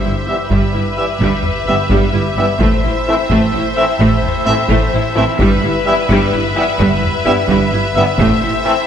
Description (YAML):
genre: cinematic, epic orchestral film score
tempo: 86 BPM (dotted quarters)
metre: 12/8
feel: straight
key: A minor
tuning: A4 = 440 Hz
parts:
  - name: clear symphonic violin section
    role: melody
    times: 0.0-8.9 s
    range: E5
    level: -23 LUFS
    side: left 3 dB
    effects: none
  - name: rich symphonic violin section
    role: second line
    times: 0.0-8.9 s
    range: B4 to C5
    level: -23 LUFS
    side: left 4 dB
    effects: none
  - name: rich symphonic viola section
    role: accompaniment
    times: 0.0-8.5 s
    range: G3 to E4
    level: -20 LUFS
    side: right 2 dB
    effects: none
  - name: mellow woodwind section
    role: sustained chords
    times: 0.0-8.9 s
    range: G3 to E5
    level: -24 LUFS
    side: left 1 dB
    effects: none
  - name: rich symphonic cello section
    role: bass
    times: 0.0-8.5 s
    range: G2 to A2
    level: -20 LUFS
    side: right 2 dB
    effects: none
  - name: rich symphonic double bass section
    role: bass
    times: 0.0-8.5 s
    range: G1 to A1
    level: -20 LUFS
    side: right 2 dB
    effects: none
  - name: clear French horn section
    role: sustained chords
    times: 0.3-8.7 s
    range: B3 to E4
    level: -24 LUFS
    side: left 4 dB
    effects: none
  - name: warm trombone section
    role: sustained chords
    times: 0.3-8.7 s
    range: E3 to A3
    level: -25 LUFS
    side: right 2 dB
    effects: none
  - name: warm trumpet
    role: stabs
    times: 0.3-8.7 s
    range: E5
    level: -21 LUFS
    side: equal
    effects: none
  - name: taiko ensemble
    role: drums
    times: 0.5-8.6 s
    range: none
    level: -21 LUFS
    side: left 1 dB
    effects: none
room: moderate scoring stage reverb, RT60 1.6 s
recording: none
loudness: -12 LUFS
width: side -8 dB against mid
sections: 0.0-8.9 A section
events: none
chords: 0.0 Em/G; 2.6 Am; 5.4 Em/G; 8.2 Am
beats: 0.51 1.21 1.90 | 2.60 3.30 4.00 4.70 | 5.39 6.09 6.79 7.49 | 8.19